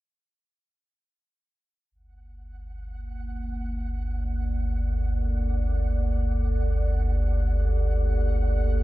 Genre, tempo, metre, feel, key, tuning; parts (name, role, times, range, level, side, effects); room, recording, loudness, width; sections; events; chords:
dark ambient drone; free time; G harmonic minor; A4 = 440 Hz
deep dark ambient pad; sustained chords; 3.1-8.8 s; Bb3 to D5; -34 LUFS; right 1 dB; chorus, built-in reverb, shimmer reverb
deep rumbling drone; drone; 2.7-8.8 s; G1 to D2; -24 LUFS; equal; built-in reverb, lush chorus
flickering grainy texture; texture; 2.6-8.8 s; F#5; -43 LUFS; right 1 dB; built-in reverb, shimmer reverb
light reverb; dark, warm production; -23 LUFS; side -17 dB against mid
1.9-8.8 A section
1.9 Gmadd9